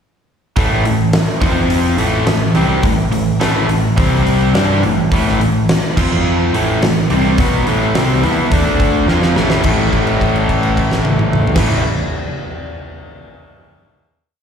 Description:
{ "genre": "hard rock", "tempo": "106 BPM", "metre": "4/4", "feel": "straight", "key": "A minor", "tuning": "A4 = 436 Hz", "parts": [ { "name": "cranked stack guitar", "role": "riff", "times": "0.6-11.8 s", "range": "A2 to G4", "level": "-19 LUFS", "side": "right 12 dB", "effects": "overdrive, slapback echo" }, { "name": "overdriven electric guitar", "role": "riff", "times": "0.6-11.8 s", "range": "A2 to G4", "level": "-18 LUFS", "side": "left 10 dB", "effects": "slapback echo" }, { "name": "overdriven picked electric bass", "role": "bass", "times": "0.6-11.8 s", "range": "A1 to G2", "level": "-18 LUFS", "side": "right 1 dB", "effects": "none" }, { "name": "huge arena drum kit", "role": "drums", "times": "0.6-11.7 s", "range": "crash cymbal, hi-hat, kick drum, snare drum, toms", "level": "-18 LUFS", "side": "equal", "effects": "none" } ], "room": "moderate club reverb, RT60 0.7 s", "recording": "live gig heard through the venue's PA, recital hall reverb", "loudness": "-12 LUFS", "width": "side -7 dB against mid", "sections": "0.6-9.6 riff; 9.6-11.9 final chord", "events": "drum fill 9.1-9.6; held note 9.6-11.6", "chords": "0.6 A5; 1.4 F5; 2.0 Am; 4.0 C5; 4.5 A5; 6.0 F5; 6.5 Am; 8.5 D5; 9.1 Am; 9.6 A5" }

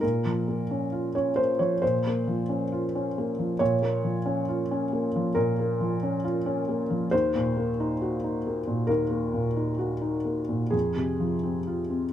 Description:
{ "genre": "neoclassical minimalist piano", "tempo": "67 BPM", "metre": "4/4", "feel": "rubato", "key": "Bb minor", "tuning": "A4 = 439 Hz", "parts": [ { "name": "felt-muted upright piano", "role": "solo", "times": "0.0-12.1 s", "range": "Eb2 to Db5", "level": "-24 LUFS", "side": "equal", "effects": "none" } ], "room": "light reverb", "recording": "none", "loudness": "-24 LUFS", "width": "side -10 dB against mid", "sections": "0.0-12.1 A section", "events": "none", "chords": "0.0 Bbm; 7.1 Ebm; 10.7 Fm" }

